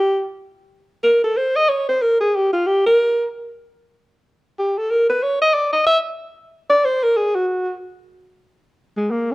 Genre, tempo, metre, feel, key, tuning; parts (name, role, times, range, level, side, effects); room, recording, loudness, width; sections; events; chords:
jazz; 186 BPM; 3/4; swing 63% on 8ths; A4 = 440 Hz
breathy alto saxophone; solo; 0.0-9.3 s; Ab3 to E5; -16 LUFS; equal
moderate large studio reverb, RT60 1.2 s; worn, warbling old tape, cassette tape, warbly pitch drift; -16 LUFS; side -21 dB against mid
0.0-7.8 A section; 7.8-9.3 A section
alto saxophone solo 0.0-7.8, 7.8-9.3